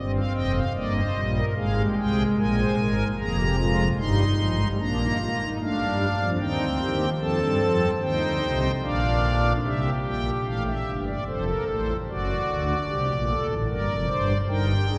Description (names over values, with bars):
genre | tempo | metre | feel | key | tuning
classical, baroque-style 4-part fugue for pipe organ | 74 BPM | 3/4 | straight | unclear | A4 = 440 Hz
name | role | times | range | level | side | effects
pipe organ, strings celeste | solo | 0.0-15.0 s | F1 to C6 | -25 LUFS | equal | none
room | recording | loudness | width
wet cathedral reverb, RT60 6.0 s | heard from further back in the room | -25 LUFS | mono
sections
0.0-9.6 A section; 9.6-15.0 B section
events
none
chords
0.0 Eb; 1.6 Fm/Ab; 2.4 Bb5; 4.0 Eb/G; 4.8 Bb; 6.4 Cm; 7.2 F7; 8.8 Bb; 9.6 C7; 11.3 F; 12.1 D7/F#; 13.7 Gm